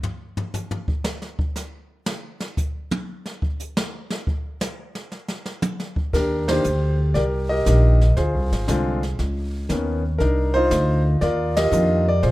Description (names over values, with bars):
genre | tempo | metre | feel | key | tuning
jazz piano trio | 118 BPM | 4/4 | swing 69% on 8ths | Eb major | A4 = 442 Hz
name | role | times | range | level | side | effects
jazz brush drum kit | drums | 0.0-12.3 s | brushed snare drum, crash cymbal, hi-hat, kick drum, ride cymbal, snare drum, toms | -27 LUFS | equal | none
clear grand piano | melody | 6.1-12.3 s | D3 to Eb5 | -21 LUFS | equal | none
upright bass | bass | 6.1-12.3 s | Ab1 to Bb2 | -20 LUFS | equal | none
room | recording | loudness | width
light reverb, small room ambience | rough home demo mix | -20 LUFS | side -17 dB against mid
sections
0.0-6.1 A section; 6.1-12.3 B section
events
drum solo 0.0-6.1; band accent 6.4, 11.5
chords
0.0 N.C.; 6.1 Ebmaj7; 8.2 Dm7b5; 9.2 Dbsus2; 10.2 Cm11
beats
| 0.04 0.55 1.05 1.56 | 2.07 2.58 3.08 3.59 | 4.10 4.61 5.12 5.62 | 6.13 6.64 7.15 7.66 | 8.16 8.67 9.18 9.69 | 10.20 10.71 11.22 11.72 | 12.23